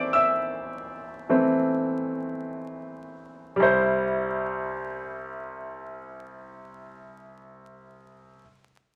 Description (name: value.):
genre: pop.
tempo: free time.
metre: none.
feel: none.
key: C major.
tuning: A4 = 440 Hz.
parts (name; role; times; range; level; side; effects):
bright concert grand piano; accompaniment; 0.0-8.4 s; C2 to E6; -27 LUFS; equal; none.
room: wet small room reverb, RT60 0.5 s.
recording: vinyl crackle.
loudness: -26 LUFS.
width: mono.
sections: 0.0-3.6 A section; 3.6-5.9 B section.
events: grand piano solo 0.0-3.6.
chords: 0.0 Am; 3.6 C.